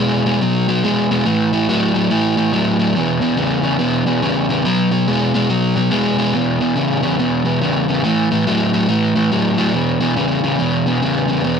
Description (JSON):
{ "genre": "blues", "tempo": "142 BPM", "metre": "4/4", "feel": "swing 63% on 8ths", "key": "E major", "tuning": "A4 = 438 Hz", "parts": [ { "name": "overdriven semi-hollow guitar", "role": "solo", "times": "0.0-11.6 s", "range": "E2 to G#3", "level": "-14 LUFS", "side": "equal", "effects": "none" } ], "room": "moderate studio reverb, RT60 0.7 s", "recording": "none", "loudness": "-14 LUFS", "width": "side -6 dB against mid", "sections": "0.0-6.3 A section; 6.3-11.6 B section", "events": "none", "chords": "0.0 B5; 1.3 A5; 3.0 E5; 4.6 B5; 6.3 E5; 8.0 A5; 9.7 E5" }